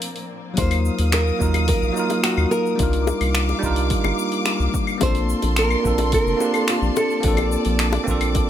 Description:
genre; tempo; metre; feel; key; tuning
sunset chillout; 108 BPM; 4/4; straight; Bb major; A4 = 442 Hz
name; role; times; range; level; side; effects
nylon-string guitar; melody; 0.0-8.5 s; F4 to C5; -24 LUFS; right 2 dB; tape echo
bell-like tine electric piano; accompaniment; 0.0-8.5 s; F3 to A5; -24 LUFS; moving between left 5 dB and right 6 dB; auto-pan, tape echo
warm studio string section; sustained chords; 0.0-8.5 s; Bb2 to Eb6; -28 LUFS; left 1 dB; none
deep house drum kit; drums; 0.0-8.5 s; claves, finger snaps, hi-hat, shaker; -26 LUFS; left 1 dB; none
round analog bass; bass; 0.6-8.4 s; F1 to Eb2; -22 LUFS; equal; none
electronic kick drum; drums; 0.6-8.5 s; none; -24 LUFS; equal; none
bongos; percussion; 0.6-8.5 s; none; -29 LUFS; left 7 dB; none
room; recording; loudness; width
light reverb, digital ambience; none; -18 LUFS; side -10 dB against mid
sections
0.6-8.5 A section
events
none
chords
0.0 Bbmaj9; 0.6 Ebmadd9; 2.8 Cm11; 5.0 Bbmaj9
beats
0.02 | 0.57 1.13 1.68 2.24 | 2.79 3.35 3.91 4.46 | 5.02 5.57 6.13 6.68 | 7.24 7.79 8.35

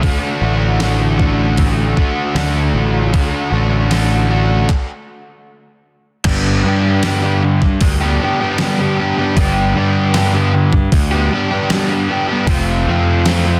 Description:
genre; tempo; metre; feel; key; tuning
rock, shoegaze and dream pop; 77 BPM; 4/4; straight; G major; A4 = 435 Hz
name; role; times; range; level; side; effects
overdriven electric guitar; riff; 0.0-13.6 s; F2 to G4; -19 LUFS; equal; subtle chorus
fuzz picked electric bass; bass; 0.0-13.6 s; F1 to G2; -18 LUFS; equal; overdrive
gated 80s digital drum machine; drums; 0.0-13.4 s; crash cymbal, handclaps, hi-hat, kick drum, snare drum; -19 LUFS; equal; gated reverb, gated reverb snare, overdrive
room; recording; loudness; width
light reverb; dense, heavily limited modern master; -15 LUFS; mono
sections
0.0-6.2 A section; 6.2-13.6 B section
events
stop 4.7-6.2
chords
0.0 D; 6.2 G; 12.5 F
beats
| 0.03 0.80 1.58 2.36 | 3.14 3.92 4.69 5.47 | 6.25 7.03 7.81 8.58 | 9.36 10.14 10.92 11.69 | 12.47 13.25

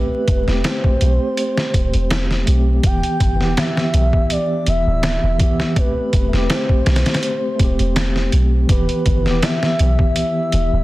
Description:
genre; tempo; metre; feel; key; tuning
trip hop; 82 BPM; 4/4; swing 54% on 16ths; E minor; A4 = 441 Hz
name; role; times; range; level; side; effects
pure breathy sine lead; melody; 0.0-10.8 s; B4 to G5; -23 LUFS; equal; chorus, tape echo
mellow tine electric piano; accompaniment; 0.0-10.8 s; E3 to G4; -22 LUFS; equal; fast stereo tremolo, vintage 12-bit sampler grit, low-pass filter, tape echo
soft 808-style bass; bass; 0.3-10.8 s; D1 to B1; -17 LUFS; equal; none
trip hop sampler-style drum kit; drums; 0.3-10.7 s; hi-hat, kick drum, snare drum; -18 LUFS; equal; studio reverb
room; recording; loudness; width
little or no reverb; dense, heavily limited modern master, vinyl crackle; -15 LUFS; side -18 dB against mid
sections
0.0-10.8 A section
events
filter sweep on tine electric piano 0.0-10.8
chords
0.0 Am7/E; 2.8 Em; 5.8 Am7/E; 8.7 Em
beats
0.64 1.37 2.11 | 2.84 3.57 4.30 5.03 | 5.76 6.50 7.23 7.96 | 8.69 9.42 10.15

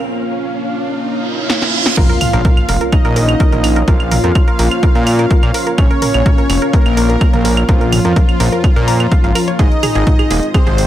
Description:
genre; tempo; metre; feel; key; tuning
melodic techno; 126 BPM; 4/4; straight; Bb minor; A4 = 440 Hz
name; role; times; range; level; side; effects
dark analog pad; sustained chords; 0.0-10.9 s; Ab3 to F5; -22 LUFS; left 1 dB; chorus, sidechain pumping
warbly dusty pluck; arpeggios; 0.0-10.7 s; Ab4 to Bb5; -23 LUFS; right 3 dB; chorus, sidechain pumping, ping-pong delay
riser, reverse cymbal and impact; sound effects; 0.0-3.9 s; none; -20 LUFS; right 2 dB; none
punchy analog drum machine; drums; 1.5-10.9 s; claves, crash cymbal, hi-hat, snare drum, toms; -20 LUFS; right 2 dB; sidechain pumping on hats, sidechain pumping on perc, sidechain pumping on cymbals, sidechain pumping on toms
fat analog lead; melody; 2.0-10.9 s; F3 to F4; -19 LUFS; equal; phaser, sidechain pumping, digital delay
soft supersaw; second line; 2.0-10.9 s; F4 to F5; -23 LUFS; left 1 dB; sidechain pumping, ping-pong delay
fat analog bass; bass; 2.0-10.9 s; Eb1 to Bb2; -15 LUFS; equal; tube saturation, sidechain pumping
electronic kick drum; drums; 2.0-10.6 s; none; -12 LUFS; equal; none
room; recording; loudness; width
light reverb; none; -11 LUFS; side -12 dB against mid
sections
0.0-2.0 A section; 2.0-10.9 B section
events
build-up 0.0-2.0; riser 0.0-2.0; break 0.1-2.0; reverse cymbal 1.0-2.0; drum fill 1.5-2.0; drop 2.0-10.9; impact 2.0-3.9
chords
0.0 Bbm; 9.6 Ab6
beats
| 0.07 0.54 1.02 1.50 | 1.97 2.45 2.92 3.40 | 3.88 4.35 4.83 5.30 | 5.78 6.26 6.73 7.21 | 7.69 8.16 8.64 9.12 | 9.59 10.07 10.54

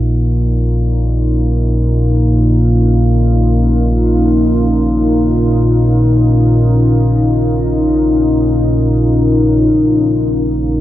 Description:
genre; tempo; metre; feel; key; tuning
dark ambient drone; free time; none; none; Bb minor; A4 = 441 Hz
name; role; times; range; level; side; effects
deep dark ambient pad; sustained chords; 0.0-10.8 s; Db4 to Bb4; -14 LUFS; left 1 dB; chorus, built-in reverb
deep rumbling drone; drone; 0.0-10.8 s; Bb1 to Bb2; -12 LUFS; equal; built-in reverb
room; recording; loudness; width
wet huge ambient reverb, RT60 7.7 s; worn, warbling old tape, cassette tape, warbly pitch drift; -10 LUFS; side -13 dB against mid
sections
0.0-9.7 A section; 9.7-10.8 B section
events
none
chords
0.0 Bbm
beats
free time

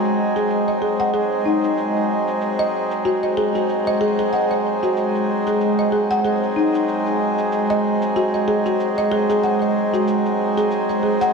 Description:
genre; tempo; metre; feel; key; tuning
organic downtempo; 94 BPM; 4/4; swing 57% on 16ths; unclear; A4 = 441 Hz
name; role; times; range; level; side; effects
pedal harmonium; accompaniment; 0.0-11.3 s; F#3 to G#4; -22 LUFS; right 1 dB; digital delay
warbly tape-like pad; sustained chords; 0.0-11.3 s; G#3 to F#5; -22 LUFS; right 1 dB; chorus, built-in reverb
folk marimba with soft mallets; arpeggios; 0.0-11.3 s; D#4 to F#5; -21 LUFS; left 1 dB; low-pass filter, digital delay
shaker; drums; 0.0-11.3 s; none; -48 LUFS; equal; none
room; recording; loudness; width
wet plate reverb, RT60 3.5 s; bright 1980s-style digital production; -17 LUFS; side -4 dB against mid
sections
0.0-11.3 A section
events
none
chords
0.0 G#7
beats
0.50 | 1.14 1.78 2.42 3.05 | 3.69 4.33 4.97 5.61 | 6.25 6.88 7.52 8.16 | 8.80 9.44 10.07 10.71

